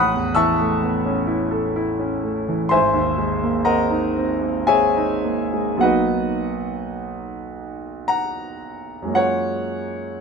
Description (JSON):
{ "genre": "classical, impressionist solo piano", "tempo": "51-66 BPM", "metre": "3/4", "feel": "rubato", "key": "unclear", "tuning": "A4 = 440 Hz", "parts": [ { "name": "clear concert grand piano", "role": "solo", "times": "0.0-10.2 s", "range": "G#1 to F#6", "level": "-19 LUFS", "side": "equal", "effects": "none" } ], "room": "light reverb", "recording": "minimal, uncompressed stereo recording", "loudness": "-18 LUFS", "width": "side -5 dB against mid", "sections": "0.0-9.2 A section; 9.2-10.2 B section", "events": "none", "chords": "0.0 Aadd9; 2.7 G#add9; 5.8 Bmaj7; 9.2 F#maj9", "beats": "0.83 1.77 | 2.72 3.67 4.68 | 5.81 6.96 8.09 | 9.16 10.10" }